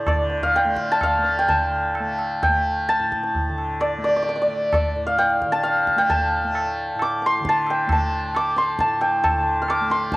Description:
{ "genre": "indian classical, Hindustani", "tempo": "131 BPM", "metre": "5/4", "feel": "straight", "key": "A raga malkauns", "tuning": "A4 = 439 Hz", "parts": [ { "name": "santur", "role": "melody", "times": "0.0-10.2 s", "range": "A4 to F6", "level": "-19 LUFS", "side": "equal", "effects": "cassette tape" }, { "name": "tanpura", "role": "drone", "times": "0.0-10.2 s", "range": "A2 to A3", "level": "-32 LUFS", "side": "right 1 dB", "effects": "none" }, { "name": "tabla", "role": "percussion", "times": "0.1-10.2 s", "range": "none", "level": "-27 LUFS", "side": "equal", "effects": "none" } ], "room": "light reverb, small room ambience", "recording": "home recording on cassette", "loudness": "-18 LUFS", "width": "side -20 dB against mid", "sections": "0.0-1.5 A section; 1.5-10.2 B section", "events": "speeding up 0.0-10.2", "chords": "none" }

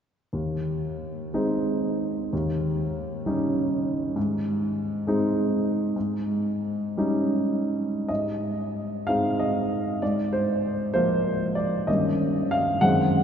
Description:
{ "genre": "classical, romantic character piece for solo piano", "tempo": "49-68 BPM (dotted quarters)", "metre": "6/8", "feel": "rubato", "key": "Ab major", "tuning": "A4 = 440 Hz", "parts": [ { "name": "warm grand piano", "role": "solo", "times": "0.3-13.2 s", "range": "Eb2 to Gb5", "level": "-23 LUFS", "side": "equal", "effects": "none" } ], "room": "wet cathedral reverb, RT60 4.6 s", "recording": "recorded in a church or concert hall, nothing above 7.8 kHz", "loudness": "-23 LUFS", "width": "side -8 dB against mid", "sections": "0.3-8.1 A section; 8.1-13.2 B section", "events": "none", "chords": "0.3 Ab/Eb; 2.3 Eb7; 4.2 Ab; 6.0 Eb7/Ab; 8.1 Ab; 10.0 Bb5/Ab; 11.9 Eb7/G" }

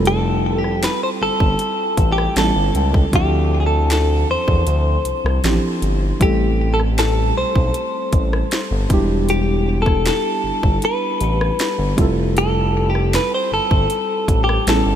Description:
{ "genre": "contemporary R&B", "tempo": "78 BPM", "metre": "4/4", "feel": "straight", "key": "unclear", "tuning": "A4 = 440 Hz", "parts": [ { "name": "muted felt-like synth keys", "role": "accompaniment", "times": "0.0-15.0 s", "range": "F3 to A4", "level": "-23 LUFS", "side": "right 1 dB", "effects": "chorus" }, { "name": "smooth synth bass", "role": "bass", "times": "0.0-15.0 s", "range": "E1 to E2", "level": "-19 LUFS", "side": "equal", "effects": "none" }, { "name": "direct-recorded clean electric guitar", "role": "melody", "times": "0.1-15.0 s", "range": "G4 to C5", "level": "-20 LUFS", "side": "left 1 dB", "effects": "wide subtle chorus, ping-pong delay" }, { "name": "trap drum kit", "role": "drums", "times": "0.1-14.9 s", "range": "hi-hat, kick drum, rim click, snare drum", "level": "-21 LUFS", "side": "equal", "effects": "none" } ], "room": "light reverb", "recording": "none", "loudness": "-15 LUFS", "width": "side -10 dB against mid", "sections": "0.0-15.0 A section", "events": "none", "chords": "0.0 Fmaj7; 2.4 A7; 3.1 Dm7; 6.2 Am7; 8.9 Em7; 12.0 Fmaj7" }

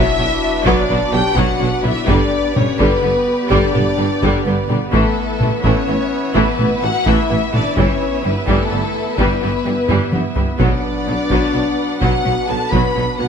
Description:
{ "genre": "cinematic, epic orchestral film score", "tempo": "85 BPM (dotted quarters)", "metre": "12/8", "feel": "straight", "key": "B minor", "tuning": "A4 = 437 Hz", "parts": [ { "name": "warm symphonic violin section", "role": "melody", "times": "0.0-13.3 s", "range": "A4 to B5", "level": "-22 LUFS", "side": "left 3 dB", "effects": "none" }, { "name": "warm symphonic violin section", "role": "second line", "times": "0.0-13.3 s", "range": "G3 to D4", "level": "-24 LUFS", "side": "left 2 dB", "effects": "none" }, { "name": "rich symphonic viola section", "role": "accompaniment", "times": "0.0-13.3 s", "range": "D3 to G3", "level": "-22 LUFS", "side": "equal", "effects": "none" }, { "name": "clear trombone section", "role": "sustained chords", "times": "0.0-13.3 s", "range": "E3 to D4", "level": "-27 LUFS", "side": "right 5 dB", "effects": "none" }, { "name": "rich symphonic string section", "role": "sustained chords", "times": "0.0-13.3 s", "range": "B3 to F#5", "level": "-26 LUFS", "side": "equal", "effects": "none" }, { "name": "warm French horn section", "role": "sustained chords", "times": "0.0-13.3 s", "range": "A3 to B4", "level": "-23 LUFS", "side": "left 5 dB", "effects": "none" }, { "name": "dark tuba", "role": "bass", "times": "0.0-13.3 s", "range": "G1 to B1", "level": "-25 LUFS", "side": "right 5 dB", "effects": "none" }, { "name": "rich studio cello section", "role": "bass", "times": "0.0-13.3 s", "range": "G2 to B2", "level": "-24 LUFS", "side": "right 2 dB", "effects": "none" }, { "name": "rich symphonic double bass section", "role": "bass", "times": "0.0-13.3 s", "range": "G1 to B1", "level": "-25 LUFS", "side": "right 3 dB", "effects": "none" }, { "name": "solo taiko drums", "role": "drums", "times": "0.7-13.2 s", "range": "none", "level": "-21 LUFS", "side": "equal", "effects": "none" }, { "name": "timpani", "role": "percussion", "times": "10.6-11.3 s", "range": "B2", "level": "-32 LUFS", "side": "equal", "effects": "none" } ], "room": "light reverb", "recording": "close, detailed microphones", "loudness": "-14 LUFS", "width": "side -7 dB against mid", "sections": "0.0-13.3 A section", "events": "drum fill 9.9-10.6", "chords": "0.0 Bm; 2.1 G; 4.9 Asus2; 7.8 Em/G; 10.6 Bm" }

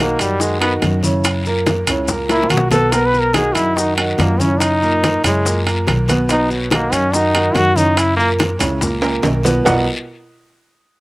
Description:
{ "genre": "Afro-Cuban jazz", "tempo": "143 BPM", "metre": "4/4", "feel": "straight", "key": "B major", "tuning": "A4 = 439 Hz", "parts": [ { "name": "brilliant trombone", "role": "melody", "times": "0.0-8.3 s", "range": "F#3 to B4", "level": "-16 LUFS", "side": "equal", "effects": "none" }, { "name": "warm upright piano", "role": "accompaniment", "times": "0.0-9.9 s", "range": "A#2 to F#5", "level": "-20 LUFS", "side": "right 2 dB", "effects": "slapback echo" }, { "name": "upright bass", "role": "bass", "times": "0.0-9.9 s", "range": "B1 to F#2", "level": "-20 LUFS", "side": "equal", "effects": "none" }, { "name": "maracas", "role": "percussion", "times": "0.0-9.8 s", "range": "none", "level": "-27 LUFS", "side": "left 4 dB", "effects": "none" }, { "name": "congas", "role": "percussion", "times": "0.2-9.8 s", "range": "none", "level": "-23 LUFS", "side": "equal", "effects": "none" }, { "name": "guiro", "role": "percussion", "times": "0.2-9.8 s", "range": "none", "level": "-30 LUFS", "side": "left 3 dB", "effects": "none" }, { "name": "timbales", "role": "percussion", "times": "0.2-9.8 s", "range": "none", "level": "-22 LUFS", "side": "right 2 dB", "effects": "none" }, { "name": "bongos", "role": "percussion", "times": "0.4-9.8 s", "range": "none", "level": "-24 LUFS", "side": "left 3 dB", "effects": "none" } ], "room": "little or no reverb", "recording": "recorded outdoors, with no room sound", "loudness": "-13 LUFS", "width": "side -20 dB against mid", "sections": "0.0-9.7 A section; 9.7-11.0 B section", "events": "trombone solo 0.0-9.7; drum fill 2.3-2.9, 9.0-9.7", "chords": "0.0 B (rootless); 1.2 F#7; 2.9 B; 4.6 F#7; 6.3 B; 8.0 F#7; 9.7 Bmaj7" }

